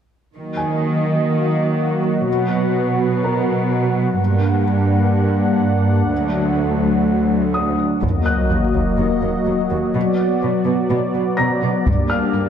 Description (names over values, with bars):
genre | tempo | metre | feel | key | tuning
cinematic, hybrid orchestral and electronic film score | 125 BPM | 4/4 | straight | Eb harmonic minor | A4 = 440 Hz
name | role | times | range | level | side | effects
brassy analog pad | sustained chords | 0.3-12.5 s | Gb3 to F#5 | -18 LUFS | left 1 dB | chorus
rich symphonic cello section | bass | 0.3-12.4 s | D2 to Eb3 | -20 LUFS | right 2 dB | none
felt-muted upright piano | texture | 0.6-12.5 s | Bb4 to Bb6 | -26 LUFS | left 2 dB | tape echo
taiko ensemble | drums | 8.0-9.0, 11.9-12.5 s | none | -24 LUFS | equal | none
sub drop | sound effects | 8.0-9.9 s | none | -23 LUFS | left 1 dB | none
room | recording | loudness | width
moderate concert hall reverb, RT60 2.3 s | dark, warm production, faint mains hum | -16 LUFS | side -8 dB against mid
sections
0.3-8.0 A section; 8.0-12.5 B section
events
impact 8.0-9.9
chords
0.3 Ebm; 2.3 B5; 4.2 Gm; 6.1 D; 8.0 Ebm; 9.9 Bm; 11.9 Gm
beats
| 0.35 0.83 1.31 1.79 | 2.27 2.75 3.23 3.71 | 4.19 4.67 5.15 5.63 | 6.11 6.59 7.07 7.55 | 8.03 8.51 8.99 9.47 | 9.95 10.43 10.91 11.39 | 11.87 12.35